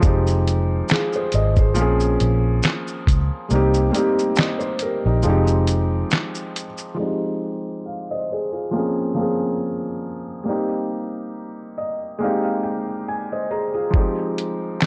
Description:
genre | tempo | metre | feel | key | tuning
lo-fi hip hop | 69 BPM | 4/4 | swing 55% on 16ths | F minor | A4 = 441 Hz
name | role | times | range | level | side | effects
felt-muted upright piano | accompaniment | 0.0-14.9 s | F3 to Bb5 | -24 LUFS | equal | low-pass filter
vintage muted fingered electric bass | bass | 0.0-6.0 s | F1 to Db2 | -21 LUFS | equal | none
lo-fi sampler-style drum kit | drums | 0.0-7.0, 13.9-14.9 s | handclaps, hi-hat, kick drum, shaker, snare drum | -22 LUFS | equal | vintage 12-bit sampler grit
room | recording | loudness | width
light reverb | cassette tape | -21 LUFS | mono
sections
0.0-7.0 A section; 7.0-14.9 B section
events
kick muted 3.5-7.0; filter sweep on felt piano 7.0-14.9; felt piano fill 11.3-13.9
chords
0.0 Fm7; 1.8 Bbm9; 3.5 Cm7; 5.2 Fm7; 8.7 Bbm9; 10.5 Cm7; 12.2 Abmaj7; 13.9 Fm7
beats
| 0.03 0.90 1.76 2.63 | 3.50 4.37 5.24 6.11 | 6.98 7.85 8.72 9.59 | 10.46 11.33 12.20 13.07 | 13.94 14.81

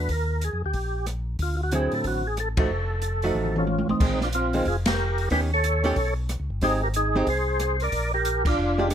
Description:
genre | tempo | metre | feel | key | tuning
soul jazz organ trio | 184 BPM | 4/4 | swing 62% on 8ths | unclear | A4 = 440 Hz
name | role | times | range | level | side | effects
percussive tonewheel organ | melody | 0.0-8.9 s | C4 to D5 | -26 LUFS | equal | slow rotary speaker, overdrive, chorus vibrato
archtop guitar, miked and amplified | accompaniment | 0.0-8.9 s | D3 to G4 | -26 LUFS | right 2 dB | none
mellow tonewheel organ | bass | 0.0-8.9 s | F1 to A2 | -27 LUFS | equal | overdrive, slow rotary speaker
open jazz drum kit | drums | 0.1-8.9 s | crash cymbal, hi-hat, kick drum, ride cymbal, rim click, snare drum, toms | -28 LUFS | equal | none
room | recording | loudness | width
light reverb | close, detailed microphones | -22 LUFS | side -9 dB against mid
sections
0.0-4.0 A section; 4.0-8.9 B section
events
band accent 2.5, 4.8, 8.4; drum fill 3.4-4.0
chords
0.1 Ebadd9; 1.4 D9; 2.7 F7b9; 4.0 Bb9sus4; 5.3 Ebaug7; 6.6 Abmaj7; 7.9 Bb6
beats
| 0.10 0.42 0.75 1.07 | 1.40 1.73 2.05 2.38 | 2.71 3.03 3.36 3.69 | 4.01 4.34 4.66 4.99 | 5.32 5.64 5.97 6.29 | 6.62 6.95 7.27 7.60 | 7.92 8.25 8.58 8.90

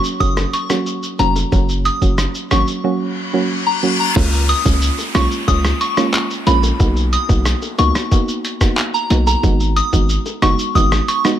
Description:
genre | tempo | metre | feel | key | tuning
dancehall | 91 BPM | 4/4 | straight | unclear | A4 = 440 Hz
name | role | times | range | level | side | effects
soft round pluck | accompaniment | 0.0-11.4 s | Gb3 to Gb4 | -20 LUFS | right 3 dB | chorus
lo-fi sampler-style drum kit | drums | 0.0-11.4 s | crash cymbal, handclaps, hi-hat, kick drum, rim click, shaker | -19 LUFS | equal | none
soft synth bell | melody | 0.2-11.2 s | Bb5 to Eb6 | -20 LUFS | left 1 dB | chorus, phaser, ping-pong delay
hard-hitting 808-style bass | bass | 0.2-11.0 s | F1 to Db2 | -17 LUFS | equal | none
bongos | percussion | 0.2-10.9 s | none | -30 LUFS | left 7 dB | none
reverse cymbal and downlifter | sound effects | 3.1-9.4 s | none | -25 LUFS | left 3 dB | none
room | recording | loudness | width
little or no reverb | none | -14 LUFS | side -11 dB against mid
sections
0.0-4.2 A section; 4.2-11.4 B section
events
reverse cymbal 3.1-4.2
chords
0.0 Gb; 4.2 Db6; 6.8 Bmaj7; 9.4 Abm7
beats
0.20 0.86 | 1.52 2.18 2.84 3.50 | 4.16 4.82 5.48 6.14 | 6.80 7.46 8.12 8.78 | 9.44 10.09 10.75

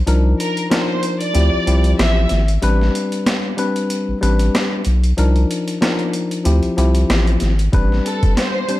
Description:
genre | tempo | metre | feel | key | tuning
hip hop, boom-bap hip-hop | 94 BPM | 4/4 | swing 56% on 16ths | A minor | A4 = 440 Hz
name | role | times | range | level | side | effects
saturated sub bass | bass | 0.0-8.0 s | G#1 to D2 | -15 LUFS | equal | none
tine electric piano | accompaniment | 0.1-8.8 s | F3 to C5 | -20 LUFS | left 2 dB | cassette tape, high-pass filter, low-pass filter
boom bap sampler-style drum kit | drums | 0.1-8.8 s | hi-hat, kick drum, rim click, snare drum | -21 LUFS | equal | none
warm studio violin section | melody | 0.4-2.3, 8.1-8.8 s | A4 to E5 | -23 LUFS | right 1 dB | high-pass filter, low-pass filter, ping-pong delay
room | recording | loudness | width
little or no reverb | vinyl crackle | -14 LUFS | side -16 dB against mid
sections
0.0-8.8 A section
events
break 0.0-7.7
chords
0.1 Cm11; 1.3 Dm11; 2.6 Am11; 5.2 Cm11; 6.5 Dm11 (rootless); 7.7 Am11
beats
| 0.07 0.71 1.35 1.99 | 2.62 3.26 3.90 4.54 | 5.18 5.82 6.45 7.09 | 7.73 8.37

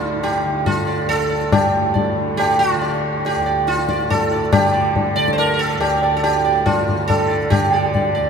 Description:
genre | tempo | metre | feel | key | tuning
indian classical, Hindustani | 140 BPM | 7/4 | straight | unclear | A4 = 440 Hz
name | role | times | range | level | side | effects
sitar | melody | 0.0-8.3 s | F4 to D5 | -18 LUFS | right 2 dB | none
tanpura | drone | 0.0-8.3 s | D2 to D3 | -24 LUFS | right 1 dB | none
tabla | percussion | 0.0-8.1 s | none | -20 LUFS | left 3 dB | none
room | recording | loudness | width
wet cathedral reverb, RT60 7.0 s | in a vast, echoing space | -15 LUFS | side -6 dB against mid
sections
0.0-1.5 A section; 1.5-8.3 B section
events
none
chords
none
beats
0.23 0.66 1.09 | 1.52 1.95 2.38 2.81 3.24 3.67 4.10 | 4.53 4.96 5.38 5.81 6.24 6.66 7.09 | 7.51 7.94

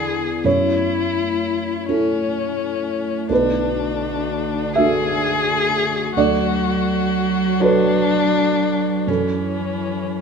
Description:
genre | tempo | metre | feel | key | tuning
neoclassical piano and strings | 42 BPM (dotted quarters) | 6/8 | uneven beats, rubato | F# minor | A4 = 444 Hz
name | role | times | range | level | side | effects
warm violin | melody | 0.0-10.2 s | C#4 to G#4 | -22 LUFS | left 5 dB | none
rich cello | second line | 0.0-10.2 s | D3 to F#3 | -24 LUFS | right 8 dB | none
felt-muted upright piano | accompaniment | 0.0-10.2 s | B1 to E5 | -21 LUFS | right 2 dB | none
warbly tape-like pad | sustained chords | 0.0-10.2 s | F#3 to D5 | -27 LUFS | left 4 dB | chorus, built-in reverb
room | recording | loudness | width
moderate concert hall reverb, RT60 1.9 s | minimal, uncompressed stereo recording | -17 LUFS | side -6 dB against mid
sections
0.0-10.2 A section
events
none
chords
0.4 F#m7; 3.3 Bm7; 6.2 Dmaj7; 9.1 F#m7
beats
| 0.45 1.89 | 3.30 4.76 | 6.16 7.60 | 9.08

